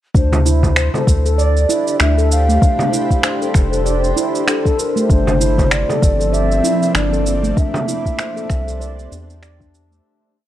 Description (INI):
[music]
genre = organic downtempo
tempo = 97 BPM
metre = 4/4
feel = swing 57% on 16ths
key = D minor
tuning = A4 = 439 Hz
[part]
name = granular cloud pad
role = sustained chords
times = 1.3-10.0 s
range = F3 to D5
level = -23 LUFS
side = equal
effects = built-in reverb, sidechain pumping
[part]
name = handpan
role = arpeggios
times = 0.1-10.0 s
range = A3 to D5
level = -21 LUFS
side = equal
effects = vintage 12-bit sampler grit, low-pass filter, tape echo
[part]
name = round analog bass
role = bass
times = 0.1-10.0 s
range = F1 to E2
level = -17 LUFS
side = equal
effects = tube saturation, sidechain pumping
[part]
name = electronic kick drum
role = drums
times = 0.1-9.7 s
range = none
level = -14 LUFS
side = equal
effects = studio reverb
[part]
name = breathy mellow Native American-style cedar flute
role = melody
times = 0.2-9.4 s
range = A4 to F5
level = -22 LUFS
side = equal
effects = tape echo
[part]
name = electronic cabasa and finger snaps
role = drums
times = 0.2-10.0 s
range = none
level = -21 LUFS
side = right 1 dB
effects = studio reverb
[part]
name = frame drum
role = percussion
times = 0.3-7.8 s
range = none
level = -22 LUFS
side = right 1 dB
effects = none
[sound]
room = small room ambience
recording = dry, gritty hardware recording, cassette tape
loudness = -13 LUFS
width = side -12 dB against mid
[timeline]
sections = 0.1-10.0 groove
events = filter sweep on handpan 0.1-10.0; fade-out 6.7-10.0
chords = 0.1 Dsus2; 2.6 Fsus2; 5.1 Gm; 7.6 C7